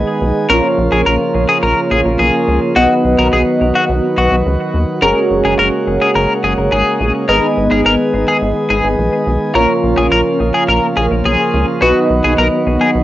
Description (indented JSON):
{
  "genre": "pop",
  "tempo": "106 BPM",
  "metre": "4/4",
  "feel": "straight",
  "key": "unclear",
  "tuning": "A4 = 440 Hz",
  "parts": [
    { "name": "soft electric-piano-like synth keys", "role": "accompaniment", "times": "0.0-13.0 s", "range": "A#3 to D#5", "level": "-16 LUFS", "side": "right 1 dB", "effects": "chorus, phaser, cassette tape" },
    { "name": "pipe organ, principal chorus", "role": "sustained chords", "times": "0.0-13.0 s", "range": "C#3 to G#4", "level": "-19 LUFS", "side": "right 1 dB", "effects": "cassette tape" },
    { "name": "rubbery square bass", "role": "bass", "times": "0.0-13.0 s", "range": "F#1 to D#2", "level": "-17 LUFS", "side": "equal", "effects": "none" },
    { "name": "twelve-string electric guitar", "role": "second line", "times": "0.5-12.9 s", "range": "F#4 to A#4", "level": "-15 LUFS", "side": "left 2 dB", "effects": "tremolo, cassette tape, analog delay" }
  ],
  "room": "wet studio reverb, RT60 0.6 s",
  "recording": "home recording on cassette, nothing above 7.7 kHz",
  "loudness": "-11 LUFS",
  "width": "side -14 dB against mid",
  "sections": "0.0-13.0 A section",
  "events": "none",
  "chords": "0.5 A#m; 2.8 B; 5.0 F#add9; 7.3 G#m; 9.6 A#m; 11.8 B"
}